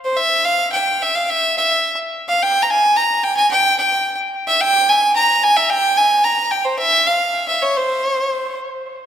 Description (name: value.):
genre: klezmer.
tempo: 109 BPM.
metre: 4/4.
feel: straight.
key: unclear.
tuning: A4 = 440 Hz.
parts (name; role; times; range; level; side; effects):
clear fiddle; solo; 0.0-8.6 s; C5 to Bb5; -14 LUFS; equal; tape echo.
room: moderate recital hall reverb, RT60 1.2 s.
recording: none.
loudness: -14 LUFS.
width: side -9 dB against mid.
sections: 0.0-8.9 A section.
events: none.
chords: none.